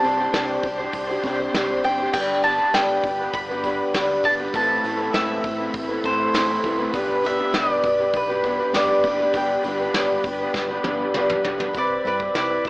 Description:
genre	folk rock and heartland rock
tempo	100 BPM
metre	4/4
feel	straight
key	G major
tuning	A4 = 439 Hz
part	mandolin	melody	0.0-12.7 s	B4 to B5	-22 LUFS	equal	tape echo
part	picked twelve-string acoustic guitar	accompaniment	0.0-12.7 s	G2 to C5	-26 LUFS	left 1 dB	none
part	bright tonewheel organ	sustained chords	0.0-12.7 s	G4 to C6	-33 LUFS	equal	none
part	electric guitar through a small old amp	riff	0.0-12.7 s	A2 to C5	-26 LUFS	equal	none
part	fingered electric bass	bass	0.0-12.7 s	F#1 to G2	-40 LUFS	equal	none
part	soft brush drum kit	drums	0.0-12.7 s	crash cymbal, hi-hat, kick drum, snare drum, toms	-28 LUFS	equal	none
room	light reverb, small room ambience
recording	AM radio sound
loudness	-19 LUFS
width	side -22 dB against mid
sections	0.0-11.8 A section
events	drum fill 10.5-11.8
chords	0.0 Csus2; 2.1 G; 4.5 Amadd9; 6.9 G/B; 9.3 G; 11.8 Cmaj7

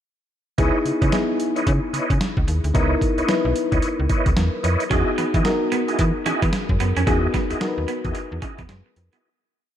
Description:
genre	R&B, new jack swing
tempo	111 BPM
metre	4/4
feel	swing 61% on 16ths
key	C# dorian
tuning	A4 = 440 Hz
part	mellow FM electric piano	accompaniment	0.6-9.3 s	B3 to B4	-24 LUFS	left 2 dB	chorus
part	tonewheel organ	stabs	0.6-9.3 s	E4 to D#5	-27 LUFS	right 1 dB	chorus vibrato, fast rotary speaker
part	slap-like FM bass	bass	0.6-9.1 s	B1 to E3	-22 LUFS	equal	none
part	boom bap sampler-style drum kit	drums	0.6-9.2 s	hi-hat, kick drum, snare drum	-24 LUFS	equal	overdrive
part	clean electric guitar	riff	4.9-9.2 s	G#3 to C#4	-28 LUFS	right 6 dB	wide subtle chorus
room	moderate echo chamber reverb, RT60 2.3 s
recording	dark, warm production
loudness	-18 LUFS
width	side -10 dB against mid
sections	0.6-9.2 verse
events	fade-out 7.1-9.2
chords	0.6 C#m9; 4.9 Emaj9

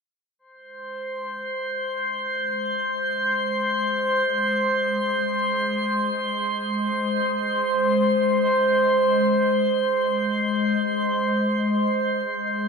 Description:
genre	ambient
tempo	free time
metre	none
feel	none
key	Ab major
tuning	A4 = 440 Hz
part	organ-like drone	drone	1.3-12.7 s	Ab3	-27 LUFS	left 2 dB	ensemble chorus, built-in reverb
part	drifting glass-harmonics texture	texture	0.8-12.7 s	C5 to C6	-22 LUFS	equal	chorus, built-in reverb, shimmer reverb
room	wet cathedral reverb, RT60 6.0 s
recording	dreamy mix soaked in reverb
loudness	-20 LUFS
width	side -5 dB against mid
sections	0.4-12.7 A section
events	fade-in on synth drone 0.4-12.7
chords	0.4 Ab

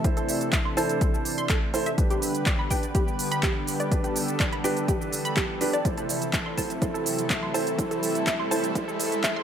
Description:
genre	progressive house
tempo	124 BPM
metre	4/4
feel	straight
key	A minor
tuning	A4 = 440 Hz
part	lush unison pad	sustained chords	0.0-9.4 s	C3 to B4	-30 LUFS	equal	chorus, sidechain pumping
part	felt-muted upright piano	stabs	0.0-9.4 s	D4 to C5	-30 LUFS	right 3 dB	sidechain pumping, low-pass filter, dub echo
part	deep house drum kit	drums	0.0-9.3 s	handclaps, hi-hat, shaker	-30 LUFS	right 1 dB	none
part	electronic kick drum	drums	0.0-9.3 s	none	-26 LUFS	equal	none
part	riser	sound effects	1.6-9.4 s	none	-40 LUFS	right 1 dB	none
part	analog pluck	arpeggios	0.2-9.4 s	G4 to C6	-32 LUFS	equal	chorus, sidechain pumping, dub echo
room	light reverb, digital ambience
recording	high-pass filter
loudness	-23 LUFS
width	side -8 dB against mid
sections	0.0-9.4 A section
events	build-up 0.0-9.4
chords	0.0 Am; 2.0 G; 5.9 Am

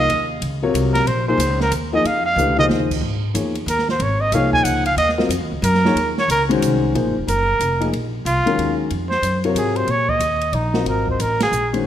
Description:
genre	modal jazz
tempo	184 BPM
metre	3/4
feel	swing 64% on 8ths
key	Bb minor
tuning	A4 = 440 Hz
part	mellow trumpet	melody	0.0-11.7 s	Eb4 to Ab5	-20 LUFS	right 1 dB	none
part	warm upright piano	accompaniment	0.0-11.9 s	C3 to Eb5	-22 LUFS	left 4 dB	none
part	upright bass	bass	0.0-11.8 s	F1 to Bb2	-22 LUFS	equal	none
part	open jazz drum kit	drums	0.1-11.8 s	crash cymbal, hi-hat, kick drum, ride cymbal, snare drum, toms	-27 LUFS	right 2 dB	none
room	moderate concert hall reverb, RT60 1.7 s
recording	none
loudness	-16 LUFS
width	side -10 dB against mid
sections	0.0-6.9 A section; 6.9-11.9 B section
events	trumpet solo 0.0-6.9; drum fill 2.4-2.7; band accent 11.3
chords	0.0 Bb9sus4; 3.0 Ab9sus4; 6.9 Bb9sus4; 10.9 Ab9sus4

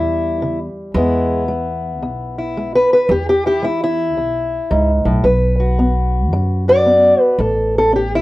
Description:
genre	acoustic country blues, solo or duo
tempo	112 BPM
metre	4/4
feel	swing 64% on 8ths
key	E mixolydian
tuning	A4 = 440 Hz
part	fingerpicked steel-string acoustic guitar	melody	0.0-8.2 s	E2 to D5	-15 LUFS	equal	none
part	upright bass	bass	0.0-8.2 s	A1 to F#2	-20 LUFS	equal	none
room	moderate studio reverb, RT60 0.7 s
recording	none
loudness	-14 LUFS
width	side -18 dB against mid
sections	0.0-8.2 A section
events	steel-string acoustic guitar solo 0.0-8.2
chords	0.0 A#dim7; 0.9 E; 5.2 B5; 7.4 A

